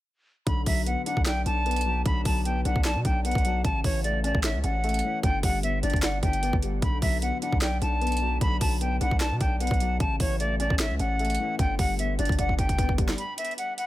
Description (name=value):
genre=hip hop, trap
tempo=151 BPM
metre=4/4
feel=half-time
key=B minor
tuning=A4 = 437 Hz
part: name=bright silver concert flute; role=melody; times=0.5-13.9 s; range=C#5 to B5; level=-29 LUFS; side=equal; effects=low-pass filter, dub echo
part: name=felt-muted upright piano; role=accompaniment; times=0.5-13.2 s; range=C#3 to D5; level=-32 LUFS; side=left 4 dB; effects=low-pass filter, dub echo
part: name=hard-hitting 808-style bass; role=bass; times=0.5-13.1 s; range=G1 to B2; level=-28 LUFS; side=equal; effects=none
part: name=trap drum kit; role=drums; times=0.5-13.9 s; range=handclaps, hi-hat, kick drum, snare drum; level=-27 LUFS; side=equal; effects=none
room=small room ambience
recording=echo-heavy mix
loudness=-23 LUFS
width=side -15 dB against mid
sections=0.5-13.2 A section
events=drum fill 12.4-13.2; break 13.2-13.9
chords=0.5 Bm; 3.6 A; 5.2 G; 6.8 Bm; 10.0 A; 11.6 G; 13.2 N.C.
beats=| 0.47 0.86 1.26 1.66 | 2.06 2.45 2.85 3.25 | 3.65 4.04 4.44 4.84 | 5.23 5.63 6.03 6.43 | 6.82 7.22 7.62 8.02 | 8.41 8.81 9.21 9.61 | 10.00 10.40 10.80 11.19 | 11.59 11.99 12.39 12.78 | 13.18 13.58